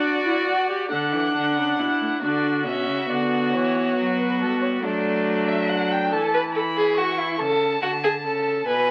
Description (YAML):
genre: classical, baroque-style fugue for string quartet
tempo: 46 BPM (dotted quarters)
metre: 6/8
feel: straight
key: D major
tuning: A4 = 441 Hz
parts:
  - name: warm violin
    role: melody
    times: 0.0-8.9 s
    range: A4 to C#6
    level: -30 LUFS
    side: equal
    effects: none
  - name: dark violin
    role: second line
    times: 0.0-8.9 s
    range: D4 to B4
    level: -26 LUFS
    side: equal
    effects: none
  - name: warm viola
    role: accompaniment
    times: 0.0-6.1 s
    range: A3 to G4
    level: -26 LUFS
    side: equal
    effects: none
  - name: rich cello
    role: bass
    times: 0.9-8.9 s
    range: A2 to G3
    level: -31 LUFS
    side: equal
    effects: none
room: moderate studio reverb, RT60 0.7 s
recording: very old 78 rpm record, vinyl crackle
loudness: -23 LUFS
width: mono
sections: 0.9-8.9 A section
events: none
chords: 0.0 Dadd9; 0.9 D; 3.5 A7/E (rootless); 4.8 D/F#; 6.1 A/E; 7.4 A/C#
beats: | 0.91 2.23 | 3.53 4.83 | 6.12 7.39 | 8.67